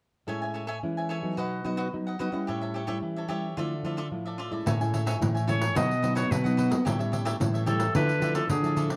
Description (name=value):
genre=samba and choro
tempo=110 BPM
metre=4/4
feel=straight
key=A major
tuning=A4 = 443 Hz
part: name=cavaquinho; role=accompaniment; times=0.3-9.0 s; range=F4 to G#5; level=-37 LUFS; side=equal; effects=none
part: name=nylon-string guitar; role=accompaniment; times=0.3-9.0 s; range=A2 to E4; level=-34 LUFS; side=equal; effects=none
part: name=nylon-string guitar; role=bass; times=4.7-9.0 s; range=A2 to B3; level=-30 LUFS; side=equal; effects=none
part: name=pandeiro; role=percussion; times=4.7-9.0 s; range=none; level=-34 LUFS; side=equal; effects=none
part: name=bright clarinet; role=melody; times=5.5-8.9 s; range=G#4 to D#5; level=-32 LUFS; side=equal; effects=none
room=light reverb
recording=dark, warm production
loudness=-28 LUFS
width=mono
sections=0.3-4.7 A section; 4.7-9.0 B section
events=none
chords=0.3 Amaj7; 1.4 B; 2.5 A7; 3.6 Dmadd9; 4.7 Amaj7; 5.8 B; 6.9 A7; 7.9 Dmadd9